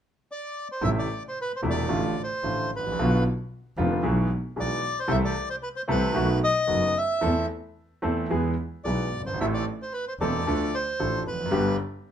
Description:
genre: tango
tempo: 112 BPM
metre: 4/4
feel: rubato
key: A minor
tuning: A4 = 440 Hz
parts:
  - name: bandoneon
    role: melody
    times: 0.3-11.8 s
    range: B4 to E5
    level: -28 LUFS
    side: equal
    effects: none
  - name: clear concert grand piano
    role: accompaniment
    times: 0.8-11.7 s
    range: E1 to A4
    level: -27 LUFS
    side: equal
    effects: none
  - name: warm double bass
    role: bass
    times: 0.8-11.8 s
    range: E1 to E2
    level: -29 LUFS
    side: right 1 dB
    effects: none
room: moderate club reverb, RT60 0.8 s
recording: minimal, uncompressed stereo recording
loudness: -24 LUFS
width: side -9 dB against mid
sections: 0.8-12.1 A section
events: none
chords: 0.0 N.C.; 0.8 Am; 1.9 Dm/A; 3.0 Bdim; 4.0 E/B; 5.1 Am/C; 6.2 B7; 7.2 Am/E; 8.3 E; 9.4 Am; 10.5 Dm; 11.5 G

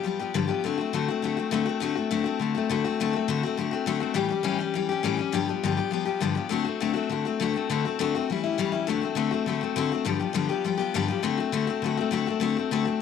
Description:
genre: rock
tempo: 204 BPM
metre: 4/4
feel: straight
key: D mixolydian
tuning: A4 = 440 Hz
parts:
  - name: picked steel-string acoustic guitar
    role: solo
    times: 0.0-13.0 s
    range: G2 to G4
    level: -24 LUFS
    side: left 7 dB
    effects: none
room: small room ambience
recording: none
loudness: -24 LUFS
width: side -6 dB against mid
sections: 0.0-8.9 A section; 8.9-13.0 A section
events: none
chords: 0.0 G7; 0.6 D7; 4.2 A7; 5.3 G7; 6.5 D7; 8.3 A7; 8.9 D7; 10.1 G7; 11.2 D7

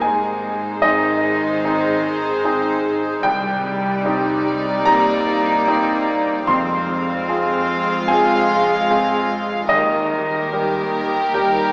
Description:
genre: cinematic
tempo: 74 BPM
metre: 4/4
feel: rubato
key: unclear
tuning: A4 = 440 Hz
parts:
  - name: warm studio violin section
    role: melody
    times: 0.0-11.7 s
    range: Bb4 to F5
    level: -28 LUFS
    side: equal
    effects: none
  - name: dark studio violin section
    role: second line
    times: 0.0-11.7 s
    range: Eb4 to G4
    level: -27 LUFS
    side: equal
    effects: none
  - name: clear baby grand piano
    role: accompaniment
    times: 0.0-11.7 s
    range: C2 to C6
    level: -22 LUFS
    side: equal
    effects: none
  - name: warm studio viola section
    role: accompaniment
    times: 0.0-11.7 s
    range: G3 to Bb3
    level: -29 LUFS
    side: equal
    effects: none
  - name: concert harp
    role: arpeggios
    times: 0.0-11.7 s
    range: Ab2 to C5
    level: -30 LUFS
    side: equal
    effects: none
  - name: warm studio cello section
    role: bass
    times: 0.0-11.7 s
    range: Eb3 to C4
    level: -29 LUFS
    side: equal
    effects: none
  - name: warm studio double bass section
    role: bass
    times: 0.0-11.7 s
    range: Ab1 to F2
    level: -39 LUFS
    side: equal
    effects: none
room: wet church reverb, RT60 3.6 s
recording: recorded in a church or concert hall, small speaker sound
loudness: -19 LUFS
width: mono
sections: 0.0-11.7 A section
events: none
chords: 0.0 Ab; 3.2 Cmadd9; 6.5 Fm; 9.7 Eb

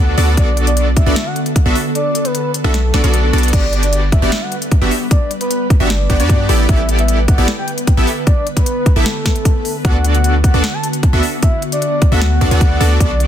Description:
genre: future bass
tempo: 152 BPM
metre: 4/4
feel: half-time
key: D major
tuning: A4 = 439 Hz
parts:
  - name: soft octave-layered synth lead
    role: melody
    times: 0.0-13.2 s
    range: A4 to A5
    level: -22 LUFS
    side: left 1 dB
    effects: chorus, tremolo, sidechain pumping, ping-pong delay
  - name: ethereal airy pad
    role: sustained chords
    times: 0.2-13.3 s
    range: D3 to B4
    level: -23 LUFS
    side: equal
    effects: ensemble chorus, built-in reverb, sidechain pumping
  - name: supersaw stab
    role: riff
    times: 0.0-13.3 s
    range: B3 to E5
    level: -20 LUFS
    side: right 1 dB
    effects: sidechain pumping
  - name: warm 808-style bass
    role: bass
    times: 0.0-13.3 s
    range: G1 to G2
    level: -15 LUFS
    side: equal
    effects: sidechain pumping
  - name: trap drum kit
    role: drums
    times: 0.2-13.3 s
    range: crash cymbal, hi-hat, snare drum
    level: -23 LUFS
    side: left 2 dB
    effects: small room ambience
  - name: electronic kick drum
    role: drums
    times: 0.4-13.1 s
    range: none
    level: -13 LUFS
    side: equal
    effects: small room ambience
room: little or no reverb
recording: dense, heavily limited modern master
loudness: -12 LUFS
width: side -10 dB against mid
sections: 0.0-13.3 A section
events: kick drops out 2.0-3.5; drum fill 3.3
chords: 0.4 Bm7; 3.5 Gmaj7; 6.5 A9sus4; 9.8 D6

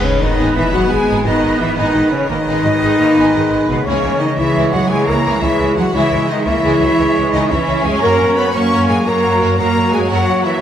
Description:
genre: cinematic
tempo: 115 BPM (dotted quarters)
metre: 12/8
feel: straight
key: G# minor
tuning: A4 = 440 Hz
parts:
  - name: rich symphonic violin section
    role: melody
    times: 0.0-10.6 s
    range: B4 to C#6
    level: -26 LUFS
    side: left 2 dB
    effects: none
  - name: bright silver concert flute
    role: second line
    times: 0.0-10.6 s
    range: B4 to C#6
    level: -24 LUFS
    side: left 2 dB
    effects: none
  - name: mellow clarinet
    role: second line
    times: 0.0-10.6 s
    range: B3 to C#5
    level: -24 LUFS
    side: left 1 dB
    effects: none
  - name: rich studio viola section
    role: accompaniment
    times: 0.0-10.6 s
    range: E3 to C#4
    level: -21 LUFS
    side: right 1 dB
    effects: none
  - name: mellow French horn section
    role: sustained chords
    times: 0.0-10.6 s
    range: B3 to C#5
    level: -18 LUFS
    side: left 2 dB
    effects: none
  - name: mellow trombone section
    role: sustained chords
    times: 0.0-10.6 s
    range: D#3 to A#3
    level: -25 LUFS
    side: right 3 dB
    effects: none
  - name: concert harp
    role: arpeggios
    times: 0.0-10.6 s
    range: F#2 to E5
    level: -28 LUFS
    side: left 6 dB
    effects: none
  - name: warm trumpet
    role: stabs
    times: 0.0-10.6 s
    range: B4 to C#5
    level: -22 LUFS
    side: right 1 dB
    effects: none
  - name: rich symphonic cello section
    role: bass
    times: 0.0-10.6 s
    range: B2 to C#4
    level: -21 LUFS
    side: right 2 dB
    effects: none
  - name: rich symphonic violin section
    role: second line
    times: 0.2-10.4 s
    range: D#4 to F#5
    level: -27 LUFS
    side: left 1 dB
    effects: none
  - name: rich symphonic double bass section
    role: bass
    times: 0.2-10.3 s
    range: G#1 to F#2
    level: -22 LUFS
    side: right 2 dB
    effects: none
room: wet scoring stage reverb, RT60 1.7 s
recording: none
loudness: -12 LUFS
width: side -9 dB against mid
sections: 0.0-10.6 A section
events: none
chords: 0.0 G#m; 3.9 C#m; 8.0 F#

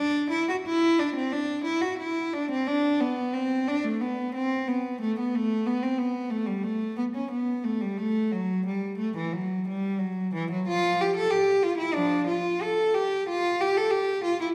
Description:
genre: classical, baroque-style suite movement for unaccompanied cello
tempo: 90 BPM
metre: 4/4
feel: rubato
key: unclear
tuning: A4 = 441 Hz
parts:
  - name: warm cello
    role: solo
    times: 0.0-14.5 s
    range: E3 to A4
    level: -27 LUFS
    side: equal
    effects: none
room: wet recital hall reverb, RT60 1.6 s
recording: recorded in a church or concert hall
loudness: -27 LUFS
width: mono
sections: 0.0-14.5 A section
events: none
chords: none

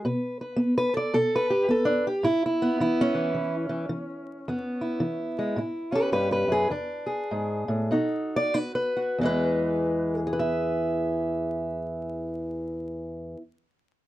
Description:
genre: acoustic country blues, solo or duo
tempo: 90-109 BPM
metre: 4/4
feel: swing 62% on 8ths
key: E mixolydian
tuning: A4 = 440 Hz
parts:
  - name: fingerpicked steel-string acoustic guitar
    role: solo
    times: 0.0-13.4 s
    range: E2 to E5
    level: -24 LUFS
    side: equal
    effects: none
room: light reverb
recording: vinyl crackle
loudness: -24 LUFS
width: side -15 dB against mid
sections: 0.0-9.2 A section; 9.2-11.9 B section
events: slowing down 4.5-9.2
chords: 0.0 Bm7; 2.3 A; 4.5 E; 5.6 A7; 6.7 E7; 7.9 B7; 9.2 E

